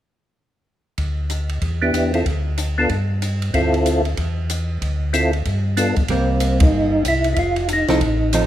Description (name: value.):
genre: soul jazz organ trio.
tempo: 188 BPM.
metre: 4/4.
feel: swing 62% on 8ths.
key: C mixolydian.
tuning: A4 = 440 Hz.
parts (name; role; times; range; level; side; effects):
mellow tonewheel organ; bass; 1.0-8.5 s; F1 to G2; -21 LUFS; equal; slow rotary speaker.
compact cocktail drum kit; drums; 1.0-8.4 s; hi-hat, kick drum, ride cymbal, snare drum; -24 LUFS; equal; none.
percussive tonewheel organ; melody; 1.8-8.5 s; B3 to A4; -20 LUFS; equal; slow rotary speaker, chorus vibrato.
vintage hollow-body jazz guitar; accompaniment; 6.1-8.5 s; F3 to A4; -22 LUFS; right 4 dB; none.
room: light reverb.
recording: none.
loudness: -17 LUFS.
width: side -12 dB against mid.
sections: 1.0-6.1 A section; 6.1-8.5 B section.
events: band accent 6.6.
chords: 1.0 N.C.; 1.6 Em7; 2.3 Dm; 2.9 N.C.; 3.5 Dm9; 4.2 N.C.; 4.8 Dm9; 5.5 G7; 6.1 C5; 7.4 F7.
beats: | 0.99 1.31 1.62 1.95 | 2.26 2.58 2.90 3.22 | 3.54 3.86 4.18 4.50 | 4.82 5.14 5.46 5.78 | 6.10 6.42 6.74 7.06 | 7.38 7.70 8.02 8.33.